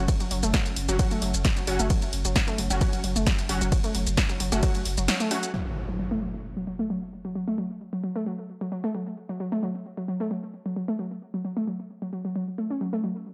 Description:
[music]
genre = driving peak-time techno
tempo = 132 BPM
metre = 4/4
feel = straight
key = F# minor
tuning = A4 = 440 Hz
[part]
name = rave stab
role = stabs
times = 0.0-5.5 s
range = F#3 to F#4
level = -36 LUFS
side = equal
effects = chorus, built-in reverb, sidechain pumping, tape echo
[part]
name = warm sub bass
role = bass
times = 0.0-5.1 s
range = F#1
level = -30 LUFS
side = equal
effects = tube saturation, sidechain pumping, low-pass filter
[part]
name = swarming drone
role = drone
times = 0.0-5.6 s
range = F#3 to C#4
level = -44 LUFS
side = equal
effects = none
[part]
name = electronic kick drum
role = drums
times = 0.1-4.7 s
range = none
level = -28 LUFS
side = equal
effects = none
[part]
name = punchy analog drum machine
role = drums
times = 0.1-5.5 s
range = hi-hat, ride cymbal, shaker, snare drum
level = -32 LUFS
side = equal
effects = low-pass filter on snare, sidechain pumping on hats, low-pass filter on hats, sidechain pumping on cymbals, low-pass filter on cymbals, sidechain pumping on perc, low-pass filter on perc, low-pass filter on room
[part]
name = warbly dusty pluck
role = riff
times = 0.2-13.1 s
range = F#3 to C#4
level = -32 LUFS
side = equal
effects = chorus, overdrive, sidechain pumping, tape echo
[part]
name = impact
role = sound effects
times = 5.5-7.4 s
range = none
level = -38 LUFS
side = equal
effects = none
[sound]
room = digital ambience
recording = dry, gritty hardware recording, transformer saturation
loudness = -28 LUFS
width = mono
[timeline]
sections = 0.0-5.5 A section; 5.5-13.3 B section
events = drop 0.0-5.5; band accent 5.1; impact 5.5-7.4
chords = 0.0 F#5

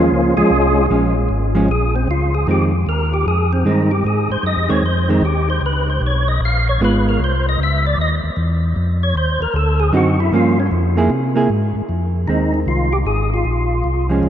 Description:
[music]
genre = soul jazz organ trio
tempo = 153 BPM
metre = 4/4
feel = swing 65% on 8ths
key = F minor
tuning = A4 = 440 Hz
[part]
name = percussive tonewheel organ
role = melody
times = 0.0-14.1 s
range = F3 to F5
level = -19 LUFS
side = equal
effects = slow rotary speaker, overdrive, chorus vibrato
[part]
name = hollow-body jazz guitar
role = accompaniment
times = 0.0-7.2, 9.9-14.3 s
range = D3 to Ab4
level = -20 LUFS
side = right 2 dB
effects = none
[part]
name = mellow tonewheel organ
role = bass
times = 0.0-14.3 s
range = Ab1 to C3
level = -18 LUFS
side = equal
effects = chorus vibrato, slow rotary speaker
[sound]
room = wet cathedral reverb, RT60 5.5 s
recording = in a vast, echoing space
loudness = -14 LUFS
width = side -10 dB against mid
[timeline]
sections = 0.0-11.9 A section; 11.9-14.3 B section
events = tonewheel organ solo 0.0-11.9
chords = 0.0 Bbm7; 2.5 Fm7; 5.6 Db7; 7.2 C; 8.8 Dbmaj13; 9.5 D7b9; 10.3 Gm7b5; 11.1 Caug7; 11.9 Fm7; 13.5 Bbm7

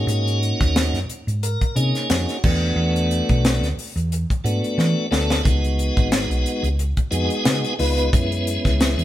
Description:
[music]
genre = electric jazz fusion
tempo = 90 BPM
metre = 4/4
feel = swing 55% on 16ths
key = unclear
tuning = A4 = 440 Hz
[part]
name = tonewheel organ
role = accompaniment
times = 0.0-9.0 s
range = Ab3 to Cb5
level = -23 LUFS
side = equal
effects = slow rotary speaker, overdrive
[part]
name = hollow-body short-scale fingered electric bass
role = bass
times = 0.0-9.0 s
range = Ab1 to E3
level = -22 LUFS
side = equal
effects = none
[part]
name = tight funk drum kit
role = drums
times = 0.1-9.0 s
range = crash cymbal, hi-hat, kick drum, snare drum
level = -22 LUFS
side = equal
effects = none
[sound]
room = moderate stone room reverb, RT60 1.3 s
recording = band playing live in one room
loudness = -18 LUFS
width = side -13 dB against mid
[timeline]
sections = 0.0-9.0 A section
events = drum fill 4.8-5.4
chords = 0.0 Ab9sus4; 2.4 E9sus4; 5.4 Db9sus4; 8.1 Gb9sus4

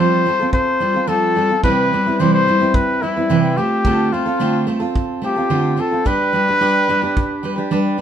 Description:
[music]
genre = acoustic pop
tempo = 108 BPM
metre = 4/4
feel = straight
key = C major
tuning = A4 = 440 Hz
[part]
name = clear trumpet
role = melody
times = 0.0-7.7 s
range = E4 to C5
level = -17 LUFS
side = left 2 dB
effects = none
[part]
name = picked steel-string acoustic guitar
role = accompaniment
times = 0.0-8.0 s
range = C3 to B4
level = -18 LUFS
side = right 2 dB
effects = none
[part]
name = kick drum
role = drums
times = 0.5-7.3 s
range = none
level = -19 LUFS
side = equal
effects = none
[sound]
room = light reverb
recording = minimal, uncompressed stereo recording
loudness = -15 LUFS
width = side -9 dB against mid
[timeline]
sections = 0.0-8.0 A section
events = none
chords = 0.0 Fadd9; 1.6 Cmaj7; 3.6 Dm7; 6.1 G

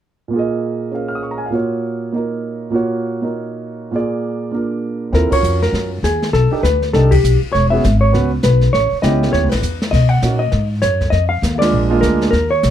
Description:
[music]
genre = jazz, small-group swing and bop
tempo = 200 BPM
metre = 4/4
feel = swing 61% on 8ths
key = Eb minor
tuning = A4 = 442 Hz
[part]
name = warm concert grand piano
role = accompaniment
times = 0.3-12.3 s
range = Bb2 to F6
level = -19 LUFS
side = right 3 dB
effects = none
[part]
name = hollow-body jazz guitar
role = melody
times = 5.1-12.7 s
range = G4 to F#5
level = -18 LUFS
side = left 1 dB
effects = none
[part]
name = upright bass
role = bass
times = 5.1-12.7 s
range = E1 to B2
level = -16 LUFS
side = left 1 dB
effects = none
[part]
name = jazz brush drum kit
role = drums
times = 5.1-12.7 s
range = brushed snare drum, hi-hat, kick drum, ride cymbal, snare drum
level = -23 LUFS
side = equal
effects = none
[sound]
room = light reverb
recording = dark, warm production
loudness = -14 LUFS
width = side -10 dB against mid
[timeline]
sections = 0.3-5.1 A section; 5.1-12.7 B section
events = band accent 5.3, 7.1, 9.5, 11.6; drum fill 9.6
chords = 0.3 Bb7sus4; 1.5 Ebm7/Bb; 3.9 Bb7; 5.1 Ebm9; 6.3 B7alt; 7.5 E6; 8.7 A9; 9.9 Bmaj7; 11.1 Bbadd11; 11.7 Bb7

